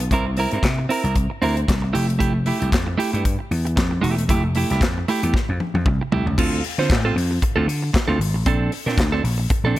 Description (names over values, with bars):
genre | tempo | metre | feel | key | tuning
disco | 115 BPM | 4/4 | swing 56% on 16ths | D minor | A4 = 440 Hz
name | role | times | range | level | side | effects
clean electric guitar | accompaniment | 0.0-9.8 s | A3 to C5 | -24 LUFS | right 3 dB | none
vintage slap bass | bass | 0.0-9.8 s | E1 to D3 | -22 LUFS | equal | none
modern studio drum kit | drums | 0.0-9.8 s | crash cymbal, handclaps, hi-hat, kick drum, snare drum, toms | -22 LUFS | left 1 dB | none
room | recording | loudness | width
small room ambience | none | -18 LUFS | side -15 dB against mid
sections
0.0-6.4 A section; 6.4-9.8 B section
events
drum fill 5.3-6.4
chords
0.1 C7; 1.9 Fmaj9; 6.4 Dm7; 8.5 Bbmaj9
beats
| 0.12 0.64 1.16 1.68 | 2.21 2.73 3.25 3.77 | 4.29 4.82 5.34 5.86 | 6.38 6.90 7.42 7.94 | 8.46 8.98 9.50